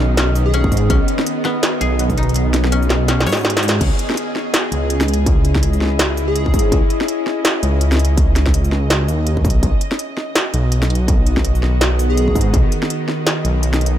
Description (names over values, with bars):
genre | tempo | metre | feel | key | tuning
half-time drum and bass | 165 BPM | 4/4 | swing 58% on 16ths, half-time | C# minor | A4 = 440 Hz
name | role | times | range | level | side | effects
bowed-like drone | sustained chords | 0.0-14.0 s | D#3 to D#5 | -23 LUFS | equal | built-in reverb, sidechain pumping
koto | arpeggios | 0.0-5.6 s | B3 to C#5 | -26 LUFS | left 4 dB | dub echo
dark detuned saw bass | bass | 0.0-14.0 s | B1 to G#2 | -16 LUFS | equal | none
flickering grainy texture | texture | 0.0-3.8 s | D#5 | -31 LUFS | right 2 dB | built-in reverb
industrial drum kit | drums | 0.2-13.9 s | crash cymbal, hi-hat, snare drum | -20 LUFS | equal | none
plucky unison lead | melody | 0.5-1.0, 6.3-6.8, 12.1-12.6 s | G#4 | -27 LUFS | left 1 dB | dub echo
electronic kick drum | drums | 0.6-12.6 s | none | -16 LUFS | equal | distortion
room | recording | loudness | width
digital ambience | none | -14 LUFS | side -11 dB against mid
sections
0.0-3.8 A section; 3.8-14.0 A section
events
drop 0.0-3.8, 3.8-14.0; kick drops out 2.4-3.8; drum fill 3.1-3.8; band accent 3.7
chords
0.0 B; 3.8 C#madd9; 9.6 B